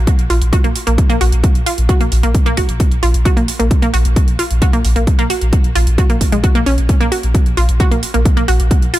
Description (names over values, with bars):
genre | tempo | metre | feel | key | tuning
driving peak-time techno | 132 BPM | 4/4 | straight | unclear | A4 = 440 Hz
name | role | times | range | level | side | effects
warm sub bass | bass | 0.0-8.9 s | Bb1 | -16 LUFS | equal | overdrive, sidechain pumping, low-pass filter
electronic hi-hat | drums | 0.1-9.0 s | none | -25 LUFS | right 4 dB | sidechain pumping on hats
electronic kick drum | drums | 0.1-8.8 s | none | -13 LUFS | equal | none
wide unison pluck | riff | 0.3-9.0 s | Ab3 to Gb4 | -18 LUFS | right 1 dB | sidechain pumping, digital delay
room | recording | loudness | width
digital ambience | none | -11 LUFS | side -15 dB against mid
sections
0.0-9.0 A section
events
none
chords
0.0 Bb5